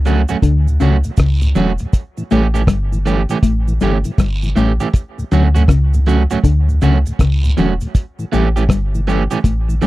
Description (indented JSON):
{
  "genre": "roots reggae",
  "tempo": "80 BPM",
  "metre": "4/4",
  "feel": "swing 63% on 16ths",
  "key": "D major",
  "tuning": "A4 = 440 Hz",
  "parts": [
    { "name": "soft dub sub bass", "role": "bass", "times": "0.0-9.9 s", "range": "E1 to D2", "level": "-15 LUFS", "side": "equal", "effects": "none" },
    { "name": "electric guitar at the edge of break-up", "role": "accompaniment", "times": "0.1-9.9 s", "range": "E3 to G4", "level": "-20 LUFS", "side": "right 6 dB", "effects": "dub echo" },
    { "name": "mellow tonewheel organ", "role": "accompaniment", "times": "0.1-9.9 s", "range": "D2 to C#4", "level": "-21 LUFS", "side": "left 1 dB", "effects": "slow rotary speaker" },
    { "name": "cloth-damped thuddy drum kit", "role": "drums", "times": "0.1-9.9 s", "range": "hi-hat, kick drum, rim click", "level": "-13 LUFS", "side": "equal", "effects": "none" },
    { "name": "cabasa and guiro", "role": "percussion", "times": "0.1-9.9 s", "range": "none", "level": "-35 LUFS", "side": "right 6 dB", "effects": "none" },
    { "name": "mellow electric guitar", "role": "riff", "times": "0.4-9.9 s", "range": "E2 to D3", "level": "-18 LUFS", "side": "left 4 dB", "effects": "none" }
  ],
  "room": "light reverb",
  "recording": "dry, close 1970s-style studio recording",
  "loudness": "-13 LUFS",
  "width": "side -17 dB against mid",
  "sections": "0.0-9.9 A section",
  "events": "none",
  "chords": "0.0 Dmaj7; 1.9 A7; 4.9 Dmaj7; 7.9 A7"
}